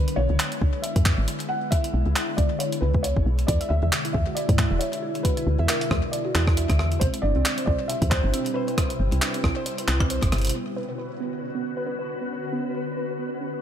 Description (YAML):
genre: IDM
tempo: 136 BPM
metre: 4/4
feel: swing 56% on 16ths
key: unclear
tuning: A4 = 444 Hz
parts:
  - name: felt-muted upright piano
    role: melody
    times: 0.0-10.1 s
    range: A#4 to F#5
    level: -30 LUFS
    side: equal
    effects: tape echo
  - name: glassy FM pad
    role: sustained chords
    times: 0.0-13.6 s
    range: B2 to F#4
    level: -31 LUFS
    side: left 3 dB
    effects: ensemble chorus, built-in reverb, phaser, vintage 12-bit sampler grit
  - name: woody FM bass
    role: bass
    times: 0.0-10.5 s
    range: E1 to G#2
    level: -23 LUFS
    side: equal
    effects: tube saturation
  - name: jungle sampler-style drum kit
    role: drums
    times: 0.1-10.6 s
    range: handclaps, hi-hat, rim click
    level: -28 LUFS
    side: equal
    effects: none
  - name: electronic kick drum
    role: drums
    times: 0.6-10.3 s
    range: none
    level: -24 LUFS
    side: equal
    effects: none
  - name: harp-like synth pluck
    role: arpeggios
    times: 3.6-13.6 s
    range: C3 to E5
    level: -31 LUFS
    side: right 3 dB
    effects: chorus, cassette tape, ping-pong delay
  - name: flickering grainy texture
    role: texture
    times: 10.9-13.6 s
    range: B4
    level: -35 LUFS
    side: left 2 dB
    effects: built-in reverb, sidechain pumping
room: light reverb, digital ambience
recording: none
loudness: -22 LUFS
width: side -9 dB against mid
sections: 0.0-10.5 A section; 10.5-13.6 B section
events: drum fill 10.3; filter sweep on ambient pad 10.5-13.6; filter sweep on synth pluck 10.5-13.6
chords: 0.0 C#m7; 3.5 E7; 7.0 Cmaj7; 10.5 Bmadd9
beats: 0.40 0.84 1.28 | 1.72 2.16 2.60 3.04 | 3.48 3.92 4.37 4.81 | 5.25 5.69 6.13 6.57 | 7.01 7.46 7.90 8.34 | 8.78 9.22 9.66 10.10 | 10.54 10.98 11.43 11.87 | 12.31 12.75 13.19